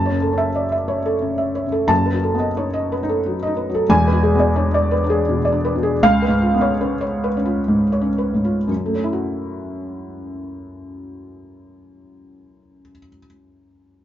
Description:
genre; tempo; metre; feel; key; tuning
neoclassical minimalist piano; 58-92 BPM; 3/4; rubato; F# minor; A4 = 440 Hz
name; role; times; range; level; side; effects
felt-muted upright piano; solo; 0.0-14.0 s; E1 to A5; -17 LUFS; equal; none
room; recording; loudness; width
moderate small room reverb, RT60 0.5 s; band playing live in one room, nothing above 7.6 kHz; -16 LUFS; side -11 dB against mid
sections
0.0-8.7 A section; 8.7-14.0 B section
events
slowing down 2.9-8.7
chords
0.0 F#m7; 1.9 B7/F#; 3.9 E7; 6.0 C#7; 8.7 F#m7

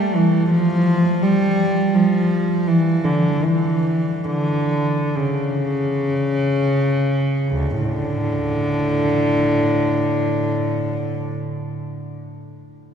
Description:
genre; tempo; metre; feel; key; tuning
classical, free, expressive piece for unaccompanied cello; 20-44 BPM; 4/4; rubato; D minor; A4 = 439 Hz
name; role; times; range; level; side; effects
clear cello; solo; 0.0-11.3 s; D2 to G3; -17 LUFS; equal; none
room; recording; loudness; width
wet cathedral reverb, RT60 4.5 s; dark, warm production; -17 LUFS; side -7 dB against mid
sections
0.0-7.6 A section; 7.6-12.9 B section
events
slowing down 0.0-7.6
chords
none

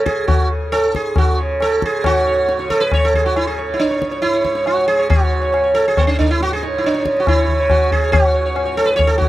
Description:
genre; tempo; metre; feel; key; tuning
indian classical, Hindustani; 138 BPM; 7/4; straight; C# raga bhairavi; A4 = 439 Hz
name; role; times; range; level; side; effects
sitar; melody; 0.0-9.3 s; B3 to C#5; -16 LUFS; right 2 dB; tape echo
tanpura; drone; 0.0-9.3 s; C#2 to C#3; -28 LUFS; right 1 dB; none
tabla; percussion; 0.1-9.3 s; none; -18 LUFS; left 2 dB; none
room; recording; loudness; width
little or no reverb; dry, close 1970s-style studio recording; -14 LUFS; side -15 dB against mid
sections
0.0-2.0 A section; 2.0-9.3 B section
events
speeding up 0.0-9.3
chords
none

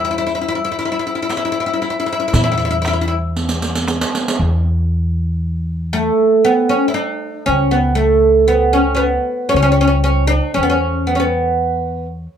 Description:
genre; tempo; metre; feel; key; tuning
Arabic maqam ensemble; 117 BPM (eighths); 10/8; straight; E maqam rast; A4 = 440 Hz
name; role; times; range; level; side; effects
oud; melody; 0.0-12.1 s; A3 to E4; -15 LUFS; equal; none
upright bass; bass; 0.0-12.3 s; C#2 to E2; -18 LUFS; equal; none
riq; percussion; 0.3-4.4 s; none; -21 LUFS; right 3 dB; none
darbuka; percussion; 0.8-4.1 s; none; -22 LUFS; right 2 dB; none
room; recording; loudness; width
little or no reverb; close, detailed microphones; -14 LUFS; side -8 dB against mid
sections
0.0-4.4 A section; 4.4-12.4 B section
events
drum fill 3.4-4.4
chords
none

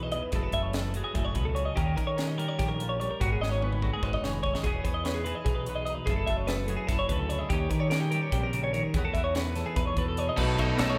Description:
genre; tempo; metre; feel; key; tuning
math rock and midwest emo; 292 BPM (eighths); 7/8; straight; E major; A4 = 442 Hz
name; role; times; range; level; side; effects
twelve-string electric guitar; accompaniment; 0.0-11.0 s; E2 to C#5; -36 LUFS; equal; none
twelve-string electric guitar; arpeggios; 0.0-11.0 s; F#4 to E5; -34 LUFS; equal; spring reverb, analog delay
growling fingered electric bass; bass; 0.0-11.0 s; E1 to D#3; -35 LUFS; equal; overdrive
crisp fusion drum kit; drums; 0.1-10.9 s; crash cymbal, hi-hat, kick drum, ride cymbal, snare drum, toms; -34 LUFS; equal; none
overdriven electric guitar; riff; 10.4-11.0 s; B2 to A4; -30 LUFS; equal; none
room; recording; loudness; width
light reverb; band playing live in one room; -29 LUFS; mono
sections
0.0-10.4 A section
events
drum fill 3.4-4.6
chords
0.3 F#m7; 1.8 D#7; 3.2 G#m7; 4.6 Emaj7; 6.1 F#m7; 7.5 D#7; 8.9 Emaj9; 10.4 B9

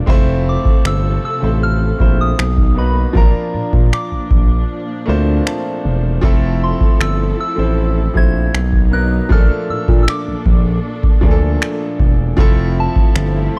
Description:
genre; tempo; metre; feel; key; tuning
contemporary R&B; 78 BPM; 4/4; straight; F major; A4 = 440 Hz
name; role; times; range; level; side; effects
clear baby grand piano; accompaniment; 0.0-13.6 s; F3 to A5; -24 LUFS; equal; none
warm studio string section; sustained chords; 0.0-13.6 s; Bb2 to A4; -29 LUFS; equal; sidechain pumping
smooth gliding synth bass; bass; 0.0-13.5 s; E1 to Bb2; -19 LUFS; equal; none
booming analog drum machine; drums; 0.1-13.3 s; finger snaps, kick drum; -14 LUFS; equal; none
soft synth bell; melody; 0.5-13.6 s; A5 to Ab6; -27 LUFS; equal; chorus, tape echo
room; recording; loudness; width
small room ambience; dark, warm production; -15 LUFS; mono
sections
0.0-13.6 A section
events
break 4.7-6.2; grand piano fill 5.1-6.2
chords
0.1 Fmaj7; 2.4 Bmaj7; 3.2 Bbmaj7; 6.2 Fmaj7; 8.5 Bmaj7; 9.3 Bbmaj7; 12.4 Fmaj7

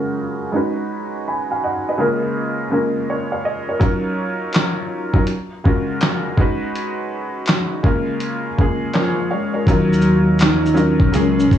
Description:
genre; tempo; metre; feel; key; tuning
lo-fi hip hop; 82 BPM; 4/4; swing 64% on 16ths; unclear; A4 = 442 Hz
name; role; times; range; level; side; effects
felt-muted upright piano; accompaniment; 0.0-11.6 s; C#3 to B5; -20 LUFS; right 1 dB; cassette tape, low-pass filter, plate reverb
dusty soul sampler-style drum kit; drums; 3.8-11.6 s; handclaps, hi-hat, kick drum, shaker, snare drum; -18 LUFS; equal; none
warm velvety synth lead; melody; 9.0-11.6 s; E#3 to D#4; -17 LUFS; left 2 dB; chorus, plate reverb
upright bass; bass; 9.7-11.6 s; B1 to D#2; -19 LUFS; left 1 dB; none
room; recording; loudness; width
moderate small room reverb, RT60 0.5 s; cassette tape, studio ambience; -16 LUFS; side -10 dB against mid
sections
0.0-9.7 A section; 9.7-11.6 B section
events
filter sweep on felt piano 0.0-9.7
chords
0.0 F#maj9/C#; 0.5 B69; 2.0 A#m7/C#; 3.8 D#m9; 5.3 F#maj9/C#; 6.4 B69; 7.8 A#m7/C#; 9.7 D#m9

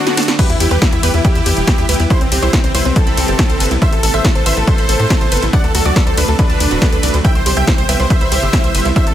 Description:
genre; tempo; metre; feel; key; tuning
uplifting trance; 140 BPM; 4/4; straight; unclear; A4 = 442 Hz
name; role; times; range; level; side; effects
dense compressed supersaw; melody; 0.0-9.1 s; C4 to G5; -19 LUFS; equal; sidechain pumping, dub echo
analog pluck; second line; 0.0-9.1 s; C4 to G5; -27 LUFS; left 1 dB; chorus, sidechain pumping, dub echo
lush unison pad; sustained chords; 0.0-9.1 s; C3 to G4; -23 LUFS; equal; chorus, sidechain pumping
wide unison pluck; arpeggios; 0.1-9.1 s; D4 to E6; -23 LUFS; right 3 dB; sidechain pumping, dub echo
punchy analog drum machine; drums; 0.1-9.1 s; crash cymbal, hi-hat, ride cymbal, snare drum; -20 LUFS; left 1 dB; overdrive, sidechain pumping on hats, sidechain pumping on cymbals
electronic kick drum; drums; 0.4-9.0 s; none; -15 LUFS; equal; overdrive
tight sequencer bass; bass; 0.5-9.1 s; D1 to A2; -17 LUFS; equal; sidechain pumping
room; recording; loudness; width
digital ambience; none; -11 LUFS; side -11 dB against mid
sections
0.0-9.1 A section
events
break 0.0-0.4; drum fill 0.0-0.4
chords
0.4 Em; 2.1 Cmaj7; 3.8 Amadd9; 5.5 D7; 7.2 Cmaj7

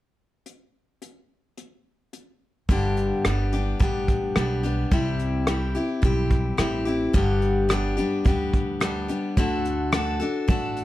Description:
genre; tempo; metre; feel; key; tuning
honky-tonk and classic country; 108 BPM; 4/4; straight; G major; A4 = 441 Hz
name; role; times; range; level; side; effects
soft brush drum kit; drums; 0.5-10.8 s; hi-hat, kick drum, rim click; -25 LUFS; equal; none
picked steel-string acoustic guitar; accompaniment; 2.7-10.8 s; G2 to A4; -25 LUFS; left 2 dB; none
upright bass; bass; 2.7-10.8 s; G1 to D2; -27 LUFS; equal; none
room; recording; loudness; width
light reverb; dark, warm production; -21 LUFS; side -15 dB against mid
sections
0.5-2.7 A section; 2.7-10.8 B section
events
none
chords
0.5 N.C.; 2.7 G; 4.9 C; 7.1 G; 9.4 D

